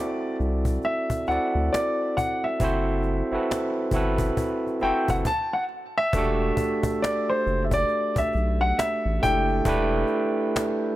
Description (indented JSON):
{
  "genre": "R&B, neo-soul",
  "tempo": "68 BPM",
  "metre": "4/4",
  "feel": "swing 61% on 16ths",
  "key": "E minor",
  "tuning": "A4 = 440 Hz",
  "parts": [
    { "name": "warm grand piano", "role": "melody", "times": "0.0-10.9 s", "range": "C5 to A5", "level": "-26 LUFS", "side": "left 1 dB", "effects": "tape echo" },
    { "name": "overdriven tine electric piano", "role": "accompaniment", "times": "0.0-11.0 s", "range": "A3 to E5", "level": "-26 LUFS", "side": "right 2 dB", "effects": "none" },
    { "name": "round analog bass", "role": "bass", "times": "0.4-10.0 s", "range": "E1 to D2", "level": "-26 LUFS", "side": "equal", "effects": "none" },
    { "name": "cajon", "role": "drums", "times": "0.4-10.8 s", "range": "none", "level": "-30 LUFS", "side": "left 1 dB", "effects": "none" }
  ],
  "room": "light reverb",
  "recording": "none",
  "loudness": "-22 LUFS",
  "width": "side -15 dB against mid",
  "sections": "0.0-6.1 A section; 6.1-11.0 B section",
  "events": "none",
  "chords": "0.0 D9; 2.6 F#m7b5; 6.1 Em11"
}